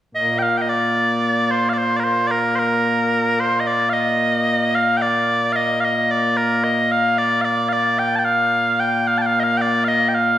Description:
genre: scottish traditional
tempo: 74 BPM (dotted quarters)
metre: 6/8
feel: straight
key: Bb major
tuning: A4 = 441 Hz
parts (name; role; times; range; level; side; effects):
- mellow small bagpipes; melody; 0.2-10.4 s; Bb2 to A5; -16 LUFS; equal; none
room: wet recital hall reverb, RT60 1.6 s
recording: recorded in a church or concert hall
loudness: -16 LUFS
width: side -12 dB against mid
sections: 1.0-10.4 A section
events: none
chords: none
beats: 0.15 | 0.96 1.77 | 2.58 3.40 | 4.21 5.02 | 5.83 6.64 | 7.45 8.26 | 9.07 9.88

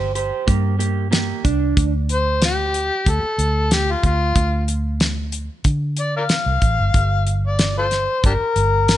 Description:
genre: straight-eighth soul blues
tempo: 93 BPM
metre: 4/4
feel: straight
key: D minor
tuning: A4 = 437 Hz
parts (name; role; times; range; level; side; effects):
- electric slide guitar; second line; 0.0-1.9 s; Bb3 to C5; -23 LUFS; right 8 dB; none
- vintage muted fingered electric bass; bass; 0.0-9.0 s; G1 to D3; -20 LUFS; equal; none
- damped 70s drum kit; drums; 0.2-9.0 s; hi-hat, kick drum, snare drum; -20 LUFS; equal; none
- overdriven harmonica; melody; 2.1-9.0 s; D4 to F5; -20 LUFS; left 3 dB; none
room: light reverb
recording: nothing above 10.6 kHz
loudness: -17 LUFS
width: side -13 dB against mid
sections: 0.0-9.0 A section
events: none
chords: 0.0 Gm; 1.8 Dm; 6.9 Gm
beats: 0.48 1.12 | 1.77 2.42 3.06 3.71 | 4.36 5.00 5.65 6.29 | 6.94 7.59 8.23 8.88

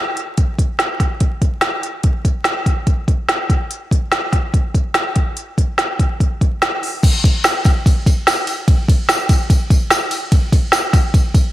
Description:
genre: indie pop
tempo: 145 BPM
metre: 4/4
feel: straight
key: none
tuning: none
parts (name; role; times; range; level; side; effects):
- organic electronic drum kit; drums; 0.2-11.4 s; crash cymbal, hi-hat, kick drum, ride cymbal, snare drum; -14 LUFS; equal; overdrive
- tambourine; percussion; 7.0-11.4 s; none; -29 LUFS; left 3 dB; none
room: moderate lush hall reverb, RT60 1.6 s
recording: big arena sound, vinyl crackle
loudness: -14 LUFS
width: side -15 dB against mid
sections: 0.0-7.0 A section; 7.0-11.5 B section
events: none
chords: none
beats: | 0.38 0.80 1.21 1.63 | 2.04 2.46 2.88 3.29 | 3.71 4.12 4.54 4.95 | 5.37 5.78 6.20 6.61 | 7.03 7.44 7.85 8.27 | 8.68 9.09 9.50 9.91 | 10.32 10.73 11.14

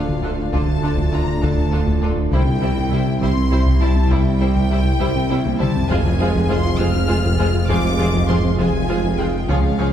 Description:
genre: cinematic, hybrid orchestral and electronic film score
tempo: 67 BPM (dotted quarters)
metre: 6/8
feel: straight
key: unclear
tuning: A4 = 441 Hz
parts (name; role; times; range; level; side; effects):
- rich studio violin section; melody; 0.0-9.9 s; F5 to F6; -28 LUFS; left 3 dB; none
- rich symphonic viola section; accompaniment; 0.0-9.9 s; D3 to F4; -28 LUFS; right 1 dB; none
- bright trombone section; sustained chords; 0.0-9.9 s; G#2 to A3; -30 LUFS; right 3 dB; none
- hollow soft pad; sustained chords; 0.0-9.9 s; G3 to F5; -28 LUFS; equal; chorus
- mellow French horn section; sustained chords; 0.0-9.9 s; C4 to F4; -28 LUFS; equal; none
- warbly dusty pluck; arpeggios; 0.0-9.6 s; C3 to F4; -28 LUFS; right 2 dB; none
- smooth synth bass; riff; 0.0-9.9 s; C2 to F3; -24 LUFS; left 2 dB; none
- rich symphonic cello section; bass; 0.0-9.9 s; C2 to F2; -25 LUFS; right 2 dB; none
- sub bass with octave; bass; 0.0-9.9 s; D1 to C#2; -27 LUFS; equal; none
- warm symphonic double bass section; bass; 0.0-9.9 s; F1 to D2; -25 LUFS; right 1 dB; none
- warm tuba; bass; 0.0-9.9 s; F1 to D2; -26 LUFS; right 2 dB; none
- sub drop; sound effects; 0.0-0.5 s; none; barely audible; none; none
- taiko ensemble; drums; 0.1-9.9 s; none; -24 LUFS; equal; none
- clear symphonic violin section; second line; 0.2-9.9 s; E4 to C#5; -30 LUFS; left 3 dB; none
room: wet scoring stage reverb, RT60 1.6 s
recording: heard from further back in the room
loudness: -16 LUFS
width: side -10 dB against mid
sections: 0.0-9.9 A section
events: impact 0.0-0.5; drum fill 5.5-5.9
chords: 0.0 Dm; 2.3 C; 5.9 Fm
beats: | 0.53 1.43 | 2.32 3.22 | 4.11 5.01 | 5.90 6.80 | 7.70 8.59 | 9.49

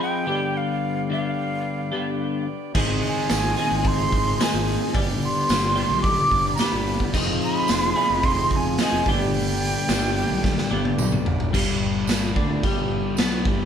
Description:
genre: psychedelic rock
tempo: 109 BPM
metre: 4/4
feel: straight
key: G phrygian dominant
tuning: A4 = 440 Hz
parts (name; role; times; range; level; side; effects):
- breathy mellow jazz flute; melody; 0.0-11.3 s; F5 to D6; -25 LUFS; right 1 dB; none
- combo organ; sustained chords; 0.0-13.7 s; B3 to Eb5; -32 LUFS; right 4 dB; spring reverb
- twelve-string electric guitar; riff; 0.0-13.7 s; G2 to Ab4; -26 LUFS; left 3 dB; rotary speaker
- fuzz fingered electric bass; bass; 2.7-13.7 s; F1 to D2; -28 LUFS; equal; overdrive
- raw garage drum kit; drums; 2.7-13.6 s; crash cymbal, hi-hat, kick drum, snare drum, toms; -24 LUFS; right 1 dB; none
- tambourine; percussion; 3.3-13.3 s; none; -37 LUFS; right 8 dB; none
room: moderate large studio reverb, RT60 1.2 s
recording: band playing live in one room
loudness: -20 LUFS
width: side -8 dB against mid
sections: 0.0-11.5 A section; 11.5-13.7 B section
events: drum fill 10.4-11.5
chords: 0.3 G; 2.8 Ab; 5.0 G; 7.1 Fm7; 9.1 G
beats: 0.01 | 0.56 1.11 1.66 2.21 | 2.75 3.30 3.85 4.40 | 4.95 5.50 6.05 6.60 | 7.15 7.70 8.24 8.79 | 9.34 9.89 10.44 10.99 | 11.54 12.09 12.63 13.18

